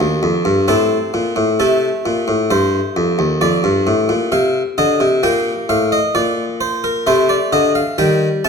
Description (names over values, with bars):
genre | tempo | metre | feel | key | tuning
classical, baroque-style 4-part fugue for harpsichord | 66 BPM | 4/4 | straight | unclear | A4 = 436 Hz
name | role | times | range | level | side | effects
harpsichord | solo | 0.0-8.5 s | Eb2 to A5 | -14 LUFS | left 1 dB | none
room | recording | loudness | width
wet recital hall reverb, RT60 1.3 s | none | -14 LUFS | side -5 dB against mid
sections
0.0-8.5 A section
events
none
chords
0.0 Bb5; 3.4 Dm/F; 5.2 Gm; 7.1 Cm